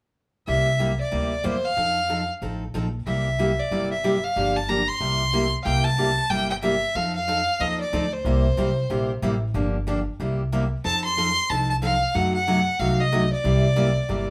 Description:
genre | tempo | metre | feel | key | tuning
country, western swing | 185 BPM | 4/4 | swing 61% on 8ths | C mixolydian | A4 = 439 Hz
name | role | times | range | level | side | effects
clear fiddle | melody | 0.5-14.3 s | C5 to C6 | -26 LUFS | equal | none
picked steel-string acoustic guitar | accompaniment | 0.5-14.3 s | C3 to A4 | -28 LUFS | equal | none
upright bass | bass | 0.5-14.3 s | G1 to F#2 | -28 LUFS | equal | none
room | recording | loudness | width
wet studio ambience, RT60 0.5 s | band playing live in one room | -23 LUFS | mono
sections
0.5-5.7 A section; 5.7-14.3 B section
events
none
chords
0.5 C7; 1.8 F7; 3.1 C7; 4.4 Gm7; 5.0 C7; 7.0 F7; 8.3 C7; 9.5 Gm7; 10.2 C7; 10.8 F7; 12.1 F#dim7; 13.4 C7

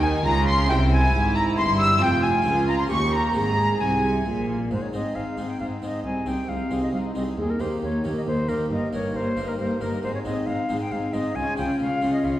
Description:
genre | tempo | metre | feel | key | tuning
classical, baroque-style concerto movement with solo episodes | 135 BPM | 3/4 | straight | Ab major | A4 = 439 Hz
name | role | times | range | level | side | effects
bright concert flute | melody | 0.0-12.4 s | Ab4 to E6 | -27 LUFS | left 1 dB | none
rich chamber violin section | melody | 0.0-12.4 s | G4 to E6 | -34 LUFS | left 5 dB | none
dark chamber violin section | second line | 0.0-12.4 s | Eb4 to E6 | -32 LUFS | equal | none
harpsichord | accompaniment | 0.0-12.4 s | C2 to C5 | -29 LUFS | equal | none
warm chamber viola section | accompaniment | 0.0-12.4 s | Bb3 to Ab4 | -30 LUFS | right 1 dB | none
rich chamber double bass section | bass | 0.0-12.3 s | F1 to Eb2 | -28 LUFS | right 1 dB | none
warm chamber cello section | bass | 0.0-12.3 s | C2 to Eb3 | -29 LUFS | right 1 dB | none
room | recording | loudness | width
wet recital hall reverb, RT60 1.6 s | heard from further back in the room | -21 LUFS | side -13 dB against mid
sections
0.0-4.7 A section; 4.7-12.4 B section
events
none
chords
0.0 Cm; 0.7 C7; 2.0 Fm; 2.5 Db; 2.9 Eb7; 3.4 Ab; 6.1 Ab/C; 7.4 Eb; 8.7 Eb/G; 10.0 Ab; 11.4 Db

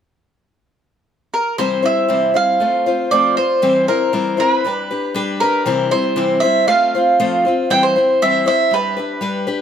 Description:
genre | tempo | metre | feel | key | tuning
rock | 118 BPM | 4/4 | straight | C major | A4 = 440 Hz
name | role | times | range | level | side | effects
mandolin | melody | 1.3-9.5 s | Bb4 to G5 | -16 LUFS | right 3 dB | analog delay
picked steel-string acoustic guitar | accompaniment | 1.6-9.6 s | C3 to C5 | -18 LUFS | left 5 dB | none
room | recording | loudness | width
light reverb | none | -14 LUFS | side -8 dB against mid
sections
0.0-1.6 A section; 1.6-9.6 B section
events
none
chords
0.0 N.C.; 1.6 C; 2.6 F; 3.6 C/E; 4.7 G; 5.7 C; 6.7 F; 7.7 C/E; 8.7 G

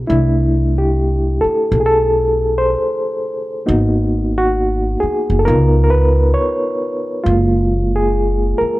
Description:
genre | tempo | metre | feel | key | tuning
R&B, neo-soul | 67 BPM | 4/4 | swing 60% on 16ths | unclear | A4 = 440 Hz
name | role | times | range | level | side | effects
overdriven reed electric piano | accompaniment | 0.0-8.8 s | G#3 to C#5 | -16 LUFS | equal | fast tremolo
upright bass | bass | 0.0-8.6 s | F#1 to C#2 | -16 LUFS | equal | none
room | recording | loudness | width
small room ambience | none | -13 LUFS | side -18 dB against mid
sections
0.0-8.8 A section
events
reed electric piano solo 0.0-8.8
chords
0.1 C6; 3.7 G#m7; 5.5 C#7; 7.2 F#maj9

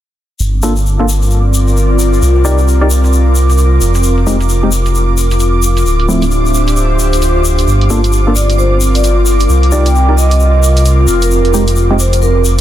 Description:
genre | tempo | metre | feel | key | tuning
UK garage, two-step garage | 132 BPM | 4/4 | swing 61% on 16ths | G minor | A4 = 440 Hz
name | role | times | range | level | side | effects
ethereal airy pad | sustained chords | 1.0-12.6 s | F4 to D6 | -19 LUFS | left 2 dB | ensemble chorus, built-in reverb, vintage 12-bit sampler grit
dark detuned saw bass | bass | 0.4-12.6 s | D1 to C2 | -11 LUFS | equal | none
tube shaker | percussion | 0.4-12.6 s | none | -22 LUFS | left 5 dB | none
airy breathy pad | texture | 0.6-12.6 s | C4 to D6 | -18 LUFS | equal | chorus
electronic hi-hat | drums | 0.5-12.6 s | none | -22 LUFS | right 3 dB | low-pass filter on hats
percussive organ stab | stabs | 0.6-12.0 s | F3 to D5 | -18 LUFS | equal | lush chorus, ping-pong delay
vibraphone with medium mallets | melody | 8.4-12.6 s | F4 to G5 | -17 LUFS | moving between left 5 dB and right 12 dB | auto-pan
room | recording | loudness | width
light reverb | dense, heavily limited modern master | -9 LUFS | side -12 dB against mid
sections
0.4-12.6 A section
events
filter sweep on drum 0.4-12.6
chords
0.4 Gm7; 2.2 Cm7; 3.8 Fm7; 5.9 Dm7; 7.7 Gm7; 9.5 Cm7; 11.1 Fm7

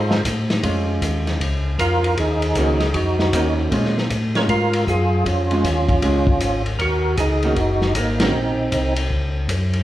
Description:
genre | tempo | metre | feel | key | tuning
soul jazz organ trio | 156 BPM | 4/4 | swing 64% on 8ths | Bb minor | A4 = 444 Hz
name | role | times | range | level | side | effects
percussive tonewheel organ | melody | 0.0-8.9 s | Bb3 to Db5 | -21 LUFS | right 1 dB | chorus vibrato, slow rotary speaker
mellow tonewheel organ | bass | 0.0-9.8 s | Gb1 to Bb2 | -21 LUFS | equal | chorus vibrato, slow rotary speaker
vintage drum kit | drums | 0.1-9.8 s | hi-hat, kick drum, ride cymbal, snare drum | -24 LUFS | left 1 dB | none
vintage hollow-body jazz guitar | accompaniment | 0.6-8.3 s | Eb3 to Gb4 | -24 LUFS | right 1 dB | none
room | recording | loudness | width
moderate recital hall reverb, RT60 1.5 s | recorded in a church or concert hall | -17 LUFS | side -14 dB against mid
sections
0.6-9.8 A section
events
band accent 8.1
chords
0.0 F7#9; 0.6 Bbm7; 2.2 Ebm7; 3.7 Bbm7; 6.8 Ebm7

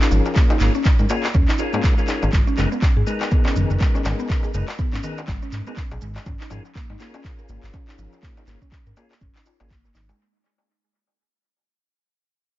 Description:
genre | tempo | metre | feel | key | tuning
afro house | 122 BPM | 4/4 | swing 58% on 16ths | unclear | A4 = 441 Hz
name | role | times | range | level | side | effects
mallet-like synth pluck | arpeggios | 0.0-10.2 s | D#3 to A#4 | -28 LUFS | equal | chorus, sidechain pumping, dub echo
percussive tonewheel organ | stabs | 0.0-9.8 s | B3 to A#4 | -29 LUFS | left 4 dB | chorus vibrato, fast rotary speaker, sidechain pumping, low-pass filter, analog delay
electronic handclaps and shaker | drums | 0.0-10.2 s | none | -30 LUFS | equal | analog delay
darbuka | percussion | 0.0-10.2 s | none | -33 LUFS | left 3 dB | analog delay
smooth synth bass | bass | 0.1-10.1 s | F#1 to G#2 | -22 LUFS | equal | tube saturation, sidechain pumping
electronic kick drum | drums | 0.4-9.8 s | none | -19 LUFS | equal | none
room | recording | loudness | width
digital ambience | echo-heavy mix, nothing above 7.5 kHz | -18 LUFS | side -15 dB against mid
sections
0.0-10.2 A section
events
fade-out 0.0-10.2; filter sweep on analog synth bass 0.0-10.2; filter sweep on tonewheel organ 0.0-10.2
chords
0.0 A#m7/G#; 2.3 G#madd9; 6.3 A#m7/G#

